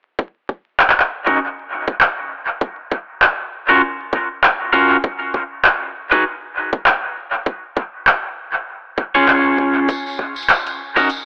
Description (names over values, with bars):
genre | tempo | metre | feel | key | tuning
glitch hop | 99 BPM | 4/4 | swing 57% on 16ths | Eb minor | A4 = 440 Hz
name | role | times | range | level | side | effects
electronic kick drum | drums | 0.2-11.1 s | none | -22 LUFS | equal | overdrive, high-pass filter on kick
drum and bass drum kit | drums | 0.8-11.2 s | handclaps, hi-hat | -20 LUFS | equal | overdrive, dub echo
electric guitar at the edge of break-up | stabs | 1.3-11.1 s | Db4 to Db5 | -19 LUFS | equal | sidechain pumping, low-pass filter, dub echo
tambourine | percussion | 9.9-11.2 s | none | -32 LUFS | equal | dub echo
room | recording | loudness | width
moderate spring reverb, RT60 1.6 s | echo-heavy mix, vinyl crackle, telephone sound | -18 LUFS | mono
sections
0.2-11.2 A section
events
none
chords
0.2 Ebm7; 2.6 Gbmaj7; 5.0 Abm7; 7.5 Db; 9.9 Ebm7